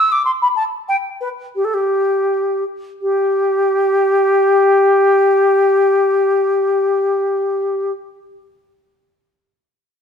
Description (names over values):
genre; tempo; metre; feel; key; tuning
classical, baroque-style fantasia for unaccompanied flute; 80-99 BPM; 3/4; rubato; G major; A4 = 440 Hz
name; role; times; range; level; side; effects
silver concert flute; solo; 0.0-7.9 s; G4 to E6; -14 LUFS; left 1 dB; none
room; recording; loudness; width
moderate recital hall reverb, RT60 1.5 s; minimal, uncompressed stereo recording; -13 LUFS; side -7 dB against mid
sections
0.0-3.0 A section; 3.0-7.4 B section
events
slowing down 0.0-3.0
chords
none